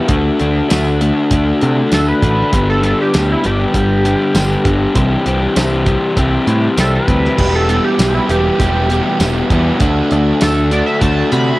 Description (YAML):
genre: indie rock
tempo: 99 BPM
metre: 4/4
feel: straight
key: unclear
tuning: A4 = 439 Hz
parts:
  - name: sync lead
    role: melody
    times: 0.0-11.6 s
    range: E4 to B5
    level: -19 LUFS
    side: right 1 dB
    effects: chorus, cassette tape
  - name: airy breathy pad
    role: sustained chords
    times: 0.0-11.6 s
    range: C4 to B5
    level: -31 LUFS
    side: right 3 dB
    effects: none
  - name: crunchy overdriven guitar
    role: riff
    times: 0.0-11.6 s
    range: E2 to G4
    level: -15 LUFS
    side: left 2 dB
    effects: spring reverb
  - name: overdriven picked electric bass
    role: bass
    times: 0.1-11.5 s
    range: E1 to C3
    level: -17 LUFS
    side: right 1 dB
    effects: none
  - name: cloth-damped thuddy drum kit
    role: drums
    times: 0.1-11.5 s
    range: crash cymbal, hi-hat, kick drum, snare drum, tambourine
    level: -18 LUFS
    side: equal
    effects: none
  - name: raw garage guitar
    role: riff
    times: 7.4-11.6 s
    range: F#3 to G4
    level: -23 LUFS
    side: right 10 dB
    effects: overdrive, lush chorus, analog delay
room: little or no reverb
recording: home recording on cassette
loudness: -11 LUFS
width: side -19 dB against mid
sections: 0.0-11.6 A section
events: analog synth lead solo 0.0-11.6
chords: 0.1 Dadd9; 2.5 G; 5.0 C; 7.4 Em; 9.8 Dadd9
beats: | 0.10 0.70 1.31 1.92 | 2.53 3.14 3.75 4.36 | 4.96 5.57 6.18 6.78 | 7.39 8.00 8.60 9.21 | 9.81 10.42 11.02